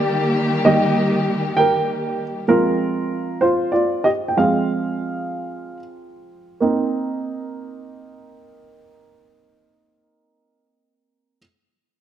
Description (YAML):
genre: pop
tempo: 47-66 BPM (dotted quarters)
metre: 6/8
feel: straight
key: C minor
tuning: A4 = 440 Hz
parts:
  - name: warm upright piano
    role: accompaniment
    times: 0.0-11.4 s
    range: Eb3 to G5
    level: -18 LUFS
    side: right 2 dB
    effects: none
  - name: warm studio string section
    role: sustained chords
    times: 0.0-2.4 s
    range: Eb3 to G4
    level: -21 LUFS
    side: left 1 dB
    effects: none
room: moderate concert hall reverb, RT60 2.0 s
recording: dark, warm production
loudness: -17 LUFS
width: side -10 dB against mid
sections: 0.0-6.6 A section; 6.6-11.7 B section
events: upright piano solo 0.0-6.6; slowing down 2.5-6.6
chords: 0.0 Eb; 2.5 Fm; 6.6 Cm7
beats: | 0.66 1.57 | 2.48 3.40 | 4.38 5.43 | 6.62 7.88 | 9.15 10.42